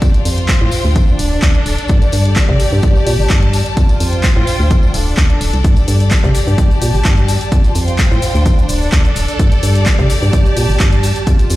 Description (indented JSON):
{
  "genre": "piano house",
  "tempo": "128 BPM",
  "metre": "4/4",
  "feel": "swing 53% on 16ths",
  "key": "unclear",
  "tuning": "A4 = 441 Hz",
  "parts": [
    { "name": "organ-like FM bass", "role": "bass", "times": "0.0-11.6 s", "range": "D1 to C3", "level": "-15 LUFS", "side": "equal", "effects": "tube saturation, sidechain pumping" },
    { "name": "electronic kick drum", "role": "drums", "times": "0.0-11.4 s", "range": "none", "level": "-13 LUFS", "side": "equal", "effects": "none" },
    { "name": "punchy analog drum machine", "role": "drums", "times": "0.0-11.6 s", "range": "handclaps, hi-hat, shaker", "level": "-22 LUFS", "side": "equal", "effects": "none" },
    { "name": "tambourine", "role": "percussion", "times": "0.0-11.6 s", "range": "none", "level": "-32 LUFS", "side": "left 3 dB", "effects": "none" },
    { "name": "clear studio string section", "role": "texture", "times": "0.0-11.6 s", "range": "D4 to A5", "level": "-20 LUFS", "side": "equal", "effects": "sidechain pumping" }
  ],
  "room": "little or no reverb",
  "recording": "played on a big sound system in a bare room, large studio reverb",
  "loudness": "-10 LUFS",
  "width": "side -16 dB against mid",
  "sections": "0.0-11.6 A section",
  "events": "none",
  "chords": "0.0 F; 0.7 Dm7; 1.9 G5; 3.8 F; 4.5 Dm7; 5.6 G5; 7.5 F; 8.2 Dm7; 9.4 G5",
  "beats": "| 0.02 0.49 0.96 1.43 | 1.89 2.36 2.83 3.30 | 3.77 4.24 4.71 5.18 | 5.64 6.11 6.58 7.05 | 7.52 7.99 8.46 8.93 | 9.39 9.86 10.33 10.80 | 11.27"
}